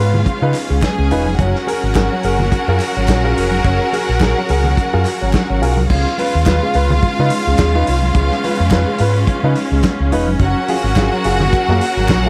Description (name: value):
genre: disco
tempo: 106 BPM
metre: 4/4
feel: swing 56% on 16ths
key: unclear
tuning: A4 = 440 Hz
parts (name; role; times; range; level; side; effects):
- warm studio violin section; second line; 0.0-12.3 s; E#4 to G#5; -23 LUFS; equal; none
- warm grand piano; accompaniment; 0.0-12.3 s; C#3 to B4; -23 LUFS; equal; none
- rich symphonic string section; sustained chords; 0.0-12.3 s; C#3 to A#4; -24 LUFS; equal; none
- fingered electric bass; bass; 0.0-12.3 s; E1 to C#3; -19 LUFS; equal; none
- congas; percussion; 0.1-12.2 s; none; -28 LUFS; equal; none
- warm soul drum kit; drums; 0.3-12.2 s; crash cymbal, hi-hat, kick drum, snare drum; -23 LUFS; equal; none
- group handclap; percussion; 0.5-12.2 s; none; -34 LUFS; equal; none
room: light reverb, small room reverb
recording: none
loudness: -15 LUFS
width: mono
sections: 0.0-5.9 A section; 5.9-12.3 B section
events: none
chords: 0.0 C#7; 1.4 F#maj9; 5.9 C#7; 10.4 F#maj9